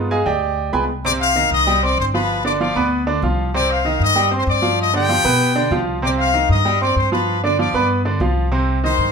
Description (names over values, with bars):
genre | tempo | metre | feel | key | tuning
latin | 193 BPM | 4/4 | straight | C minor | A4 = 441 Hz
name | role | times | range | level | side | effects
bright grand piano | accompaniment | 0.0-9.1 s | C3 to C6 | -19 LUFS | right 3 dB | none
upright bass | bass | 0.0-9.1 s | G1 to B2 | -22 LUFS | left 1 dB | none
bright trumpet section | melody | 1.0-9.1 s | G4 to Eb6 | -18 LUFS | left 5 dB | none
room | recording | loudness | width
moderate large studio reverb, RT60 0.9 s | minimal, uncompressed stereo recording | -15 LUFS | side -5 dB against mid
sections
0.0-1.0 A section; 1.0-9.1 B section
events
grand piano solo 0.0-1.0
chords
0.0 G7b9b13; 1.0 Cmadd9; 2.3 G7; 3.5 Cmadd9; 7.3 G7; 8.5 Cm